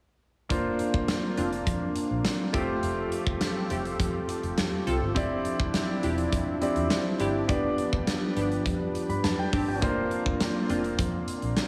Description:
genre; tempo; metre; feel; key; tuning
1980s-style pop; 103 BPM; 4/4; straight; unclear; A4 = 440 Hz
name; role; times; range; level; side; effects
clear concert grand piano; accompaniment; 0.5-11.7 s; A3 to B5; -33 LUFS; equal; none
chorused pulse-width pad; sustained chords; 0.5-11.7 s; F3 to B4; -35 LUFS; equal; none
vintage muted fingered electric bass; bass; 0.5-11.5 s; E1 to G2; -35 LUFS; equal; none
big rock drum kit; drums; 0.5-11.7 s; hi-hat, kick drum, snare drum; -33 LUFS; equal; gated reverb
funky polysynth comp; stabs; 1.4-10.8 s; A3 to A4; -36 LUFS; equal; chorus
room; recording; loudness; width
light reverb, small room ambience; none; -28 LUFS; mono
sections
0.5-11.7 A section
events
none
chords
0.5 Bbadd9/F; 2.5 Fadd9; 5.2 Cadd9; 7.5 G/F; 9.8 Bbadd9/F

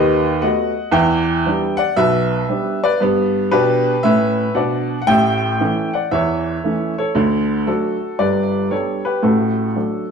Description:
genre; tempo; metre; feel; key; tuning
jazz, stride piano; 116 BPM; 4/4; swing 64% on 8ths; D major from 3.0 s; A4 = 440 Hz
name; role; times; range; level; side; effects
clear baby grand piano; solo; 0.0-10.1 s; G1 to G5; -15 LUFS; equal; none
room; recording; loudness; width
wet studio reverb, RT60 0.8 s; heard from further back in the room; -15 LUFS; side -6 dB against mid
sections
0.0-10.1 A section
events
none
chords
0.0 B7/D#; 0.9 Em7; 3.0 Em/G; 5.1 A7; 7.2 D; 8.2 G; 9.2 D/A

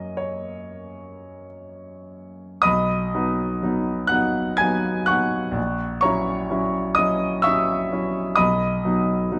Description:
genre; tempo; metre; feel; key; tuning
classical, romantic nocturne for solo piano; 46-66 BPM; 3/4; rubato; B major; A4 = 441 Hz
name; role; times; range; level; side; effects
warm grand piano; solo; 0.0-9.4 s; A#1 to G#6; -23 LUFS; equal; none
room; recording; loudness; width
moderate scoring stage reverb, RT60 1.7 s; close, detailed microphones; -22 LUFS; mono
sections
0.0-2.6 A section; 2.6-9.4 B section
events
none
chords
0.0 F#; 2.6 B; 5.6 F#7/A#; 8.4 B

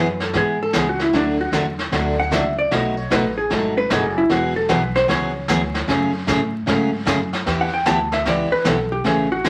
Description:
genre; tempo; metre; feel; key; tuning
country, western swing; 152 BPM; 4/4; swing 66% on 8ths; unclear; A4 = 442 Hz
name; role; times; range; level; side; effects
vintage hollow-body jazz guitar; second line; 0.0-9.5 s; D4 to A5; -23 LUFS; equal; none
picked steel-string acoustic guitar; accompaniment; 0.0-9.5 s; B2 to G#4; -24 LUFS; equal; none
upright bass; bass; 0.0-9.5 s; E1 to A2; -29 LUFS; equal; none
vintage brush drum kit; drums; 0.2-9.5 s; brushed snare drum, hi-hat, snare drum; -27 LUFS; equal; none
room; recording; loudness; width
wet small room reverb, RT60 0.6 s; vinyl crackle; -20 LUFS; mono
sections
0.0-9.5 A section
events
hollow-body jazz guitar solo 0.0-9.5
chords
0.0 E; 1.1 D; 2.7 B7; 4.3 Eadd9; 5.9 F#madd9; 7.5 Em

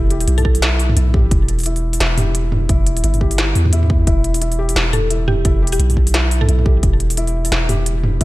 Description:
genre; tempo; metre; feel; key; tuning
half-time drum and bass; 174 BPM; 4/4; swing 58% on 16ths, half-time; E phrygian; A4 = 440 Hz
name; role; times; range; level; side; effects
felt-muted upright piano; arpeggios; 0.0-8.2 s; E4 to G4; -25 LUFS; left 2 dB; vintage 12-bit sampler grit, ping-pong delay
long sustained 808-style bass; bass; 0.0-8.2 s; E1 to E2; -16 LUFS; equal; tube saturation
industrial drum kit; drums; 0.1-8.2 s; hi-hat, snare drum, toms; -20 LUFS; equal; none
mallet-like synth pluck; melody; 0.4-0.5, 4.9-6.8 s; G4 to A4; -26 LUFS; right 1 dB; chorus, ping-pong delay
electronic kick drum; drums; 0.4-8.2 s; none; -17 LUFS; equal; none
room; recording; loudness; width
little or no reverb; none; -14 LUFS; side -18 dB against mid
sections
0.0-8.2 A section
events
none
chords
0.0 Em

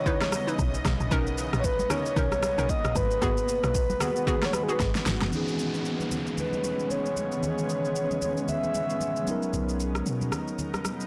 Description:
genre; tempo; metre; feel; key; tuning
amapiano; 114 BPM; 4/4; swing 58% on 16ths; C# dorian; A4 = 442 Hz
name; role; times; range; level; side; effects
breathy flute-like synth lead; melody; 0.0-9.3 s; G#4 to E5; -32 LUFS; equal; chorus, digital delay
granular cloud pad; sustained chords; 0.0-11.1 s; C#3 to D#5; -36 LUFS; equal; built-in reverb, sidechain pumping
hollow square pluck; stabs; 0.0-4.8 s; B3 to B4; -35 LUFS; equal; chorus, digital delay
deep house drum kit; drums; 0.1-11.1 s; kick drum, rim click, shaker, snare drum; -33 LUFS; equal; soft clipping on snare
congas; percussion; 0.1-11.0 s; none; -39 LUFS; equal; none
woody log drum bass; bass; 0.6-5.3 s; F#1 to B1; -32 LUFS; equal; none
mellow tine electric piano; accompaniment; 5.3-11.1 s; D#3 to A#4; -34 LUFS; equal; none
downlifter; sound effects; 5.3-9.5 s; none; -41 LUFS; equal; none
punchy sub bass; bass; 9.5-10.3 s; B1 to B2; -32 LUFS; equal; none
room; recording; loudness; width
light reverb; blown-out, overdriven recording, overdrive; -27 LUFS; mono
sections
0.0-5.3 A section; 5.3-11.1 B section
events
drop 0.0-5.3; drum fill 4.8-5.3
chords
0.0 C#m9; 0.9 Bmaj9; 3.0 G#m7; 5.3 C#m9; 9.3 Bmaj9

